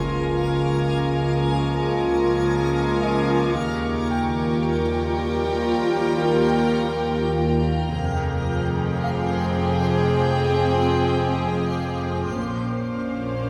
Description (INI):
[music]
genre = cinematic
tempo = 54 BPM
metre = 4/4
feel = straight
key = F minor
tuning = A4 = 444 Hz
[part]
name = warm symphonic violin section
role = melody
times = 0.0-13.5 s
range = F5 to Ab5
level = -36 LUFS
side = equal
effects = none
[part]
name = warm symphonic violin section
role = second line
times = 0.0-13.5 s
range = Ab4 to C5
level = -32 LUFS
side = equal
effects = none
[part]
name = dark symphonic viola section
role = accompaniment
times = 0.0-13.5 s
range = C4 to F4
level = -32 LUFS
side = equal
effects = none
[part]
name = backwards swelling texture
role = sustained chords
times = 0.0-13.5 s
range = Db4 to C6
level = -35 LUFS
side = equal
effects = built-in reverb
[part]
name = clear trombone section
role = sustained chords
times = 0.0-13.5 s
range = F3 to Bb3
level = -34 LUFS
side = equal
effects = none
[part]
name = mellow French horn section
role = sustained chords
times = 0.0-13.5 s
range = Bb3 to Bb4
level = -31 LUFS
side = equal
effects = none
[part]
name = warm symphonic cello section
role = bass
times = 0.0-13.5 s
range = Db2 to Bb2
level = -30 LUFS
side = equal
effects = none
[part]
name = warm symphonic double bass section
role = bass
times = 0.0-13.5 s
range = F1 to Eb2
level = -30 LUFS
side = equal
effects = none
[part]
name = organ-like drone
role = drone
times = 0.0-13.5 s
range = Bb1 to F2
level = -33 LUFS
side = equal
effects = ensemble chorus, built-in reverb
[part]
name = impact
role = sound effects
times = 0.0-3.6 s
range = none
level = barely audible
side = none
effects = none
[part]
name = felt-muted upright piano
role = texture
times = 0.0-12.4 s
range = Eb5 to C6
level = -39 LUFS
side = equal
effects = none
[part]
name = warm symphonic violin section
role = texture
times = 0.0-13.5 s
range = C6 to Eb6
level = -40 LUFS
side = equal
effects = none
[part]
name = timpani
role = percussion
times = 7.9-9.5 s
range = none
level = barely audible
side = none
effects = none
[sound]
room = wet scoring stage reverb, RT60 1.7 s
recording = heard from further back in the room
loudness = -22 LUFS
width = mono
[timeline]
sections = 0.0-13.5 A section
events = band accent 0.0; impact 0.0-3.6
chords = 0.0 Db6; 3.6 Ebadd9; 7.9 Fmadd9; 12.4 Bbmadd9